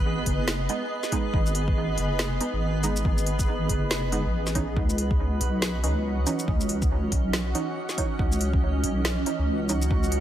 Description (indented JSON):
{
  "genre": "deep dubstep",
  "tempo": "140 BPM",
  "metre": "4/4",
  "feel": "swing 60% on 16ths, half-time",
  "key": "C# minor",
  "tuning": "A4 = 440 Hz",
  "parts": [
    { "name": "granular cloud pad", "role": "sustained chords", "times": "0.0-10.2 s", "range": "E3 to D#5", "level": "-32 LUFS", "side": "right 1 dB", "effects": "built-in reverb" },
    { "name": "filtered dub chord stab", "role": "stabs", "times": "0.0-10.2 s", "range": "E3 to D#4", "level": "-33 LUFS", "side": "right 4 dB", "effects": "chorus, dub echo" },
    { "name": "deep soft wobble bass", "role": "bass", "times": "0.0-10.2 s", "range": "F#1 to C#2", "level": "-26 LUFS", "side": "equal", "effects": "chorus" },
    { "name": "backwards swelling texture", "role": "texture", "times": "0.0-10.2 s", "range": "F#3 to B4", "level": "-34 LUFS", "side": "right 1 dB", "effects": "built-in reverb" },
    { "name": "deep house drum kit", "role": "drums", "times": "0.3-10.2 s", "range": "hi-hat, shaker, snare drum", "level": "-30 LUFS", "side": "left 1 dB", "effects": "none" },
    { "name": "electronic kick drum", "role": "drums", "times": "0.3-10.0 s", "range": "none", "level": "-26 LUFS", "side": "equal", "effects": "none" }
  ],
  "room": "light reverb, digital ambience",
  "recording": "none",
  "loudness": "-23 LUFS",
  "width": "side -11 dB against mid",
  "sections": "0.0-10.2 A section",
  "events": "none",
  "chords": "0.0 G#m; 4.8 C#madd9"
}